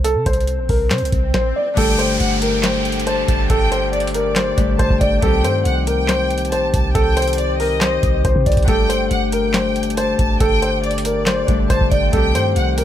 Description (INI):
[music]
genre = hip hop, trap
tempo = 139 BPM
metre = 4/4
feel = half-time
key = unclear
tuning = A4 = 440 Hz
[part]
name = dark concert grand piano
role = melody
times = 0.0-12.8 s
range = A4 to D5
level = -20 LUFS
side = left 1 dB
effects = tape echo
[part]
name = clean 808-style bass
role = bass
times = 0.0-12.8 s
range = G1 to C3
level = -21 LUFS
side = equal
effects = none
[part]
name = booming analog drum machine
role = drums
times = 0.0-12.8 s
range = handclaps, hi-hat, kick drum, snare drum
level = -20 LUFS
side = equal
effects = none
[part]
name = swell and downlifter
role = sound effects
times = 0.5-5.2 s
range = none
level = -27 LUFS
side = right 1 dB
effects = none
[part]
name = Celtic harp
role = accompaniment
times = 1.7-12.8 s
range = D3 to G4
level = -25 LUFS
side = left 6 dB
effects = none
[part]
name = rich studio violin section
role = second line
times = 1.8-12.8 s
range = D5 to A5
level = -24 LUFS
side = equal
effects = tape echo
[part]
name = chamber organ, flutes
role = sustained chords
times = 1.8-12.8 s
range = D3 to G4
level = -25 LUFS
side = right 1 dB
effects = none
[sound]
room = little or no reverb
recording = none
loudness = -15 LUFS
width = side -11 dB against mid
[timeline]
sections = 0.0-1.8 A section; 1.8-12.8 B section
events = swell 0.5-1.8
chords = 0.0 C5; 1.8 Gsus2; 5.2 Cm; 8.7 Gsus2; 12.1 Cm